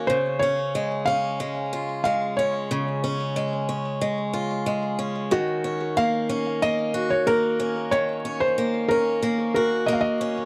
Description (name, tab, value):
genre	folktronica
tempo	92 BPM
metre	4/4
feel	straight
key	Eb dorian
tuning	A4 = 440 Hz
part	picked swing-style acoustic guitar	arpeggios	0.0-10.5 s	Db3 to Gb4	-27 LUFS	equal	tape echo
part	felt-muted upright piano	melody	0.1-10.3 s	Gb4 to F5	-26 LUFS	equal	tape echo
room	light reverb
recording	dry, close 1970s-style studio recording, vinyl crackle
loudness	-24 LUFS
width	mono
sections	0.0-10.5 A section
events	none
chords	0.1 Db; 5.3 Ebm7